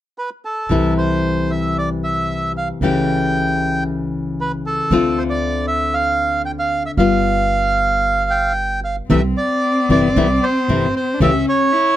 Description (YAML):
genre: tango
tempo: 114 BPM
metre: 4/4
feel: rubato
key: C major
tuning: A4 = 435 Hz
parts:
  - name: bandoneon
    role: melody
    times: 0.2-12.0 s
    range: A4 to G5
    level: -19 LUFS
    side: right 2 dB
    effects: none
  - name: nylon-string guitar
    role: accompaniment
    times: 0.7-11.3 s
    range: C3 to G4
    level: -19 LUFS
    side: left 4 dB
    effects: none
  - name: upright bass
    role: bass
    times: 0.7-11.4 s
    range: G1 to D2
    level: -23 LUFS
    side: right 2 dB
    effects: none
  - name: dark cello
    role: second line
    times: 9.1-12.0 s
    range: C4 to E4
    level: -19 LUFS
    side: left 3 dB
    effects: none
room: little or no reverb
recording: close, detailed microphones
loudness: -15 LUFS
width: side -12 dB against mid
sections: 0.7-9.1 A section; 9.1-12.0 B section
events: none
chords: 0.0 N.C.; 0.7 C6; 2.8 A7/C#; 4.9 Dm7; 7.0 G7; 9.1 C6; 11.2 A/C# (rootless)